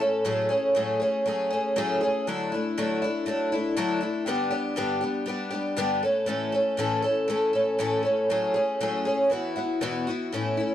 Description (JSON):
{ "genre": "rock", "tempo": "119 BPM", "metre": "4/4", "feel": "straight", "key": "A major", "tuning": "A4 = 440 Hz", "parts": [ { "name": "picked twelve-string acoustic guitar", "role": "solo", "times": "0.0-10.7 s", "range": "E2 to A4", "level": "-24 LUFS", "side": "equal", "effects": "none" } ], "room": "light reverb", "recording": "dark, warm production", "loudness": "-24 LUFS", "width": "side -11 dB against mid", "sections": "0.0-10.3 A section", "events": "none", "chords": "0.3 F#madd9/A; 2.3 Dadd9; 4.3 G; 6.0 A; 8.3 F#madd9/A; 9.3 Esus2" }